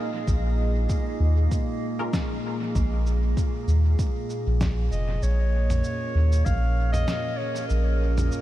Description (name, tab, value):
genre	ambient dub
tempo	97 BPM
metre	4/4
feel	swing 54% on 16ths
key	Bb minor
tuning	A4 = 440 Hz
part	warbly tape-like pad	sustained chords	0.0-8.4 s	Bb2 to Eb5	-31 LUFS	equal	chorus, built-in reverb
part	drifting glass-harmonics texture	texture	0.0-5.3 s	Ab3 to Ab4	-38 LUFS	right 4 dB	chorus, built-in reverb
part	soft dub sub bass	bass	0.3-8.3 s	F1 to Eb2	-22 LUFS	equal	none
part	electronic kick drum	drums	0.3-6.6 s	none	-26 LUFS	equal	small room reverb
part	lo-fi sampler-style drum kit	drums	0.3-8.4 s	shaker, snare drum, toms	-35 LUFS	equal	overdrive, small room reverb, dub echo
part	filtered dub chord stab	stabs	2.0-2.1 s	Ab3 to Bb4	-39 LUFS	left 2 dB	phaser, ensemble chorus, dub echo
part	dark clarinet	melody	4.9-8.4 s	Bb4 to F5	-31 LUFS	equal	dub echo
room	light reverb, digital ambience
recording	vinyl crackle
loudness	-22 LUFS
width	side -14 dB against mid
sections	0.0-5.2 A section; 5.2-8.4 B section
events	none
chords	0.0 Bb7(no3); 5.2 Bbm7